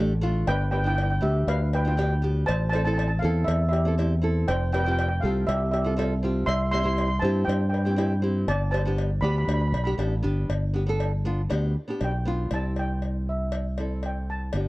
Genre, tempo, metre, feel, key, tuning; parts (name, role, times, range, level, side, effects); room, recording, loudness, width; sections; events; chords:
calypso; 120 BPM; 4/4; straight; C major; A4 = 437 Hz
steel pan; melody; 0.0-14.7 s; G4 to C6; -29 LUFS; right 1 dB
nylon-string guitar; accompaniment; 0.0-14.7 s; A3 to A4; -30 LUFS; equal
fingered electric bass; bass; 0.0-14.7 s; F1 to G2; -24 LUFS; equal
cowbell; percussion; 0.5-14.7 s; -35 LUFS; left 4 dB
little or no reverb; worn, warbling old tape, cassette tape, warbly pitch drift; -22 LUFS; side -19 dB against mid
0.0-10.5 A section; 10.5-12.5 B section; 12.5-14.7 C section
0.5 G; 2.5 Am; 4.5 Fsus2; 6.5 C; 8.5 G; 12.5 C